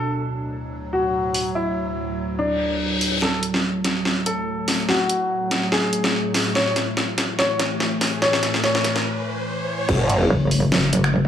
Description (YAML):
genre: heavy wobble dubstep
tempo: 144 BPM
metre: 4/4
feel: swing 54% on 16ths, half-time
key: F# minor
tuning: A4 = 444 Hz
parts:
  - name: warm grand piano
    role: melody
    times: 0.0-8.9 s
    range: D4 to C#5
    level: -24 LUFS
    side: left 1 dB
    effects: low-pass filter, dub echo
  - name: evolving wavetable pad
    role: sustained chords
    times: 0.0-11.3 s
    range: D2 to A3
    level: -26 LUFS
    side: equal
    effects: chorus, built-in reverb, sidechain pumping
  - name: dubstep drum kit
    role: drums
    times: 1.3-11.1 s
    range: crash cymbal, finger snaps, hi-hat, snare drum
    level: -22 LUFS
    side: equal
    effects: overdrive, high-pass filter on hats, high-pass filter on snare, high-pass filter on cymbals, high-pass filter on room
  - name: reverse cymbal, riser and sub drop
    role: sound effects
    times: 2.5-11.3 s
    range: none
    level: -29 LUFS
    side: left 1 dB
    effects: none
  - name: growl bass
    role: bass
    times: 9.9-10.3 s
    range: F#1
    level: -18 LUFS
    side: equal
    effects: chorus, overdrive
  - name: electronic kick drum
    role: drums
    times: 9.9-10.0 s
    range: none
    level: -25 LUFS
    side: equal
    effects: overdrive
  - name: metallic wobble bass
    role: bass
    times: 10.3-11.3 s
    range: F#1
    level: -18 LUFS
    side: left 1 dB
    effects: chorus, overdrive
room: moderate digital room reverb, RT60 1.3 s, digital ambience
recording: small room ambience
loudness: -19 LUFS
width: side -9 dB against mid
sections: 0.0-3.2 A section; 3.2-9.9 B section; 9.9-11.3 C section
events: reverse cymbal 2.5-3.2; build-up 3.2-9.9; drum fill 3.2-9.1; riser 3.2-9.9; filter sweep on ambient pad 3.2-9.9; filter sweep on grand piano 3.2-9.9; break 9.1-9.9; drop 9.9-11.3; impact 9.9-11.3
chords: 0.0 D; 3.2 F#m; 9.9 F#madd9